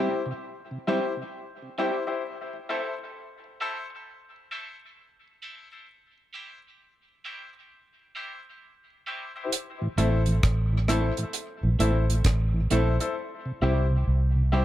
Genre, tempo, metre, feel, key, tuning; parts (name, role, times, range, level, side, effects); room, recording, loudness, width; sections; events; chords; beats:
dub reggae; 66 BPM; 4/4; swing 64% on 16ths; A minor; A4 = 439 Hz
electric guitar at the edge of break-up; accompaniment; 0.0-14.6 s; G3 to A4; -34 LUFS; right 4 dB; high-pass filter, tape echo
mellow tonewheel organ; accompaniment; 0.0-14.6 s; A2 to E4; -32 LUFS; equal; chorus vibrato, high-pass filter
warm grand piano; stabs; 0.0-14.6 s; E4 to C5; -32 LUFS; left 4 dB; high-pass filter, tape echo
deep reggae drum kit; drums; 9.5-13.2 s; hi-hat, kick drum, rim click; -26 LUFS; right 1 dB
vintage muted fingered electric bass; bass; 10.0-14.6 s; A1 to C2; -23 LUFS; equal
light reverb, small room ambience; -24 LUFS; side -14 dB against mid
0.0-14.6 A section
filter sweep 0.0-9.5; break 5.9-9.5; part muted 13.2-14.6
0.0 C; 2.2 Am; 5.9 C; 9.5 Am; 13.2 C
0.42 1.33 | 2.25 3.15 4.06 4.97 | 5.88 6.79 7.70 8.61 | 9.52 10.43 11.34 12.25 | 13.16 14.07